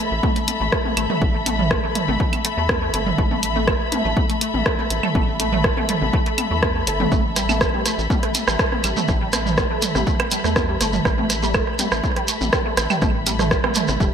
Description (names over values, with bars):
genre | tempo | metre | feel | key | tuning
minimal techno | 122 BPM | 4/4 | straight | unclear | A4 = 439 Hz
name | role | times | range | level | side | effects
resonant blip pluck | riff | 0.0-14.1 s | G3 to A4 | -27 LUFS | right 1 dB | phaser, ensemble chorus, sidechain pumping, digital delay
muted studio string section | texture | 0.0-14.1 s | A4 to B5 | -26 LUFS | left 2 dB | sidechain pumping
rubbery square bass | bass | 0.1-14.1 s | E1 to E2 | -26 LUFS | equal | sidechain pumping
electronic kick drum | drums | 0.2-14.1 s | none | -23 LUFS | equal | none
minimal click drum kit | percussion | 0.2-14.0 s | claves, rim click, toms | -24 LUFS | right 2 dB | gated reverb, digital delay
punchy analog drum machine | drums | 0.4-13.9 s | hi-hat, rim click | -23 LUFS | equal | gated reverb
shekere | percussion | 7.1-14.1 s | none | -27 LUFS | right 3 dB | none
room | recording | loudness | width
light reverb | bright 1980s-style digital production | -18 LUFS | side -7 dB against mid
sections
0.0-14.1 A section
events
none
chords
0.0 A5